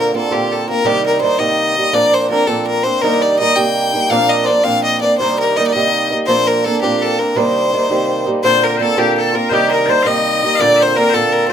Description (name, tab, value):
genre	celtic folk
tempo	111 BPM (dotted quarters)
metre	6/8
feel	straight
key	unclear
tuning	A4 = 440 Hz
part	clear fiddle	melody	0.0-11.5 s	G4 to G5	-15 LUFS	left 2 dB	plate reverb
part	fingerpicked swing-style acoustic guitar	accompaniment	0.0-11.5 s	Bb2 to F4	-16 LUFS	right 4 dB	none
part	loud bright bagpipes	second line	8.4-11.5 s	G4 to F5	-18 LUFS	left 5 dB	none
room	wet small room reverb, RT60 0.5 s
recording	none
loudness	-12 LUFS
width	side -8 dB against mid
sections	0.0-8.4 A section; 8.4-11.5 A section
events	none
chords	0.0 Bbadd9; 0.9 Cm7; 1.9 Bbadd9; 3.0 Cm7; 4.1 Bbadd9; 5.2 Cm7; 6.3 Bbadd9; 7.4 Cm7; 8.4 Bbadd9; 9.5 Cm7; 10.6 Bbadd9